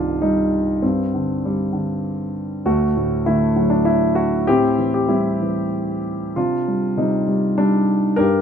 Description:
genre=classical, lyrical solo piano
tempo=98 BPM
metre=3/4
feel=rubato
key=unclear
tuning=A4 = 440 Hz
part: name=warm grand piano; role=solo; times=0.0-8.4 s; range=C2 to Bb4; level=-17 LUFS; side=equal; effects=none
room=moderate small room reverb, RT60 0.5 s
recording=minimal, uncompressed stereo recording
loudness=-17 LUFS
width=side -7 dB against mid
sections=0.0-8.4 A section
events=none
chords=0.0 Cmadd9; 0.8 Gsus4; 2.7 D; 4.5 Am7; 6.4 Cmadd9

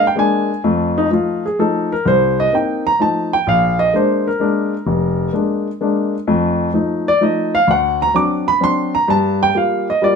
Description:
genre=jazz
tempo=128 BPM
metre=3/4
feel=swing 69% on 8ths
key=F mixolydian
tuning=A4 = 440 Hz
part: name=dark grand piano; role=solo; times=0.0-10.2 s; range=F1 to D6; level=-14 LUFS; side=equal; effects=none
room=moderate small room reverb, RT60 0.5 s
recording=none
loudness=-14 LUFS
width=side -6 dB against mid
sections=0.0-10.2 A section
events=grand piano solo 0.0-10.2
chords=0.0 Bb7; 0.6 F7; 2.0 Cm7; 3.0 F7; 3.5 Bb7; 6.3 F7; 7.7 D7; 9.1 Gm7

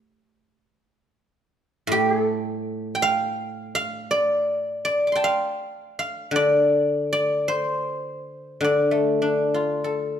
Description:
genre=chinese traditional, Chinese solo plucked strings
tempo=48-56 BPM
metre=4/4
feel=rubato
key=D yu mode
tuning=A4 = 440 Hz
part: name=guzheng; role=solo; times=0.0-10.2 s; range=A2 to D6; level=-21 LUFS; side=equal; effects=none
room=moderate recital hall reverb, RT60 1.6 s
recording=minimal, uncompressed stereo recording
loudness=-20 LUFS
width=side -9 dB against mid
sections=0.0-10.2 A section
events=none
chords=none

